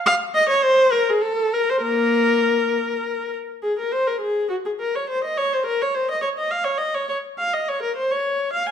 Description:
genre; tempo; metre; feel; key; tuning
classical, baroque-style suite movement for unaccompanied viola; 104 BPM; 3/4; rubato; Bb minor, Db major from 3.6 s; A4 = 440 Hz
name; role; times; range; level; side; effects
rich viola; solo; 0.1-8.7 s; Bb3 to F5; -19 LUFS; left 1 dB; none
room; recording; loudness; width
moderate recital hall reverb, RT60 1.5 s; minimal, uncompressed stereo recording; -19 LUFS; side -8 dB against mid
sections
0.0-3.6 A section; 3.6-8.7 A section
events
none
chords
none

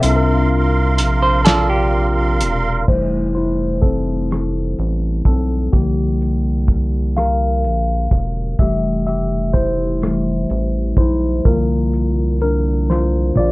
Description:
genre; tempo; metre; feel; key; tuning
slow six-eight R&B; 42 BPM (dotted quarters); 6/8; straight; F major; A4 = 436 Hz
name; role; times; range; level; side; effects
tine electric piano; accompaniment; 0.0-13.5 s; C3 to F5; -19 LUFS; left 2 dB; phaser
musette accordion; sustained chords; 0.0-2.9 s; Bb4 to C6; -21 LUFS; right 3 dB; none
rubbery square bass; bass; 0.0-13.5 s; E1 to C2; -19 LUFS; equal; none
cloth-damped thuddy drum kit; drums; 0.0-13.5 s; crash cymbal, hi-hat, kick drum, rim click, snare drum, toms; -16 LUFS; equal; none
semi-hollow electric guitar; second line; 1.2-2.8 s; G4 to C5; -19 LUFS; right 3 dB; warbly pitch drift
room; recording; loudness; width
little or no reverb; worn, warbling old tape, cassette tape, warbly pitch drift, low-pass filter; -15 LUFS; side -21 dB against mid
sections
0.0-2.9 A section; 2.9-13.5 B section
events
break 0.0-2.9; tine electric piano solo 2.9-13.5; drum fill 12.9-13.5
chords
0.0 C7sus4; 2.9 Fmaj9; 5.7 C7sus4; 8.6 Fmaj9; 11.5 C7sus4

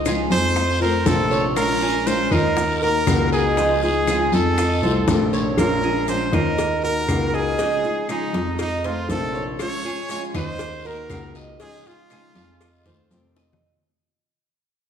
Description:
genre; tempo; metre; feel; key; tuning
latin, Cuban son and guajira; 120 BPM; 4/4; straight; unclear; A4 = 440 Hz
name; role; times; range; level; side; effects
flamenco guitar; accompaniment; 0.0-13.6 s; C3 to Gb4; -25 LUFS; left 2 dB; none
Cuban tres; arpeggios; 0.0-13.6 s; Eb4 to Eb5; -27 LUFS; right 3 dB; none
dark baby grand piano; bass; 0.0-13.6 s; Bb1 to F2; -23 LUFS; equal; none
bongos and cowbell; percussion; 0.1-13.6 s; none; -31 LUFS; left 4 dB; none
claves; percussion; 0.1-12.9 s; none; -38 LUFS; left 4 dB; none
guiro; percussion; 0.1-5.6, 9.6-13.6 s; none; -36 LUFS; left 4 dB; none
maracas; percussion; 0.1-13.6 s; none; -41 LUFS; right 6 dB; none
brilliant trumpet; melody; 0.3-13.4 s; Eb4 to Db5; -23 LUFS; right 1 dB; none
room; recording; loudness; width
wet large studio reverb, RT60 1.4 s; heard from further back in the room; -18 LUFS; side -8 dB against mid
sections
0.0-5.6 A section; 5.6-13.6 B section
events
fade-out 5.6-13.6; drum fill 13.4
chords
0.0 Dbadd9; 0.6 F7; 1.6 Bbm7; 2.6 Ebm; 3.6 Dbadd9; 4.6 F7; 5.6 Bbm7; 6.6 Ebm; 7.6 Dbadd9; 8.6 F7; 9.6 Eb13sus4; 10.6 Ebm; 11.6 Dbadd9; 12.6 F7

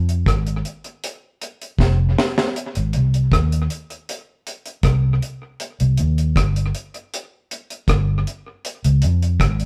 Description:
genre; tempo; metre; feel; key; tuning
roots reggae; 79 BPM; 4/4; straight; Ab major; A4 = 440 Hz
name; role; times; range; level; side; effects
vintage muted fingered electric bass; bass; 0.0-9.7 s; F1 to F2; -20 LUFS; equal; none
deep reggae drum kit; drums; 0.1-9.7 s; hi-hat, kick drum, rim click, snare drum; -24 LUFS; equal; tape echo
room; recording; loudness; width
moderate studio reverb, RT60 0.7 s; band playing live in one room; -20 LUFS; mono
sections
0.0-2.6 A section; 2.6-9.7 A section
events
drum fill 1.8-2.6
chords
none

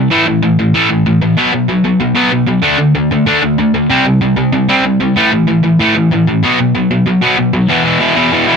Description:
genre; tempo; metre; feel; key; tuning
punk; 190 BPM; 4/4; straight; E minor; A4 = 440 Hz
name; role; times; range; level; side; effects
distorted electric guitar; solo; 0.0-8.6 s; E2 to D4; -9 LUFS; equal; distortion
room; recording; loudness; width
light reverb; none; -9 LUFS; side -6 dB against mid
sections
0.0-7.7 A section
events
none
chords
0.1 A5; 1.4 B5; 2.6 D5; 3.9 C5; 5.2 A5; 6.4 B5; 7.7 E5

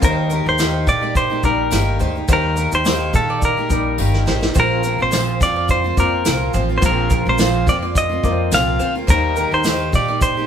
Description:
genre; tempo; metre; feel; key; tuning
acoustic pop; 106 BPM; 4/4; swing 55% on 16ths; unclear; A4 = 440 Hz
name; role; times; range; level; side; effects
direct-recorded clean electric guitar; melody; 0.0-10.5 s; A4 to F5; -19 LUFS; left 1 dB; none
clear concert grand piano; accompaniment; 0.0-10.5 s; G3 to C5; -26 LUFS; left 7 dB; none
picked steel-string acoustic guitar; accompaniment; 0.0-10.5 s; Bb2 to G4; -23 LUFS; right 2 dB; none
mandolin; arpeggios; 0.0-10.4 s; Bb4 to D5; -28 LUFS; right 2 dB; none
upright bass; bass; 0.0-10.5 s; G1 to Bb2; -22 LUFS; equal; none
vintage brush drum kit; drums; 0.0-10.4 s; kick drum, shaker, snare drum; -19 LUFS; equal; none
tambourine; percussion; 0.6-9.8 s; none; -31 LUFS; left 5 dB; none
room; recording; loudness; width
moderate studio reverb, RT60 0.6 s; band playing live in one room; -15 LUFS; side -8 dB against mid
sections
0.0-10.5 A section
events
drum fill 4.0-4.6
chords
0.0 Eb; 4.6 Bbsus2; 9.1 Eb

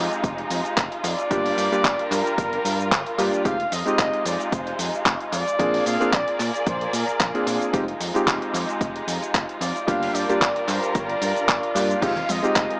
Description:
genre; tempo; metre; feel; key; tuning
nu-disco, nu disco; 112 BPM; 4/4; swing 55% on 16ths; F dorian; A4 = 439 Hz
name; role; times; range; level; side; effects
warm electric grand piano; accompaniment; 0.0-12.8 s; G3 to Ab4; -26 LUFS; equal; sidechain pumping, analog delay
warm studio violin section; sustained chords; 0.0-12.8 s; G3 to D5; -27 LUFS; equal; sidechain pumping
fingered electric bass; bass; 0.0-12.7 s; F1 to Bb2; -30 LUFS; equal; tube saturation
dusty soul sampler-style drum kit; drums; 0.1-12.8 s; crash cymbal, handclaps, hi-hat, shaker; -25 LUFS; equal; small room ambience, analog delay
electronic kick drum; drums; 0.2-12.7 s; none; -26 LUFS; equal; small room ambience
mellow trumpet section; melody; 1.0-12.8 s; Bb4 to F5; -26 LUFS; equal; analog delay
analog pluck; arpeggios; 12.0-12.7 s; Eb3 to Eb4; -35 LUFS; equal; none
congas; percussion; 12.2-12.4 s; none; -38 LUFS; equal; none
room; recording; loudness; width
moderate spring reverb, RT60 2.5 s; echo-heavy mix, small speaker sound; -20 LUFS; side -34 dB against mid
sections
0.0-12.8 A section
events
none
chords
0.0 Fm7; 1.3 Gm7; 3.5 Fm7; 5.6 Bb7; 7.7 Fm7; 9.9 Gm7; 12.0 Fm7

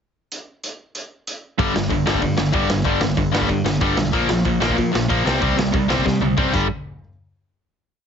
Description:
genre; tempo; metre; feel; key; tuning
punk rock; 188 BPM; 4/4; straight; unclear; A4 = 441 Hz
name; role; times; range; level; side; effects
raw garage drum kit; drums; 0.3-6.6 s; crash cymbal, hi-hat, kick drum, snare drum, toms; -23 LUFS; equal; none
distorted electric guitar; riff; 1.6-6.7 s; G2 to C4; -22 LUFS; left 11 dB; overdrive
distorted electric guitar; riff; 1.6-6.7 s; G2 to C4; -22 LUFS; right 12 dB; distortion
modern bright picked electric bass; bass; 1.6-6.7 s; G1 to C3; -25 LUFS; equal; none
room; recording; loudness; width
light reverb; heavily compressed radio sound, nothing above 7.8 kHz; -17 LUFS; side -7 dB against mid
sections
0.3-1.6 pickup bar; 1.6-6.7 verse; 6.7-8.0 final hit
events
drum fill 6.0-6.7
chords
0.3 N.C.; 1.6 G5; 4.1 Bb5; 5.3 C5; 6.5 G5; 6.7 N.C.

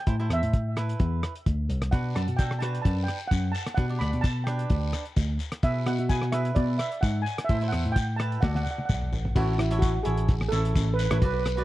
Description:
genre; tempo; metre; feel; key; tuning
calypso; 129 BPM; 4/4; straight; G major; A4 = 442 Hz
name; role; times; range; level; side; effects
steel pan; melody; 0.0-11.6 s; E4 to B5; -32 LUFS; right 2 dB; tape echo
cavaquinho; accompaniment; 0.1-11.6 s; D4 to D5; -36 LUFS; right 3 dB; none
bell-like tine electric piano; bass; 0.1-11.6 s; A1 to B2; -27 LUFS; equal; analog chorus
cloth-damped thuddy drum kit; drums; 0.1-11.6 s; crash cymbal, hi-hat, kick drum, rim click, snare drum, toms; -26 LUFS; equal; none
guiro; percussion; 1.9-11.5 s; none; -42 LUFS; left 9 dB; none
room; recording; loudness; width
little or no reverb; dry, close 1970s-style studio recording; -24 LUFS; side -16 dB against mid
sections
0.0-9.4 A section; 9.4-11.6 B section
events
drum fill 8.4-9.4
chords
0.1 Am; 1.9 Bm7; 3.8 G; 5.6 E/B; 7.5 Am; 8.4 D; 9.4 A

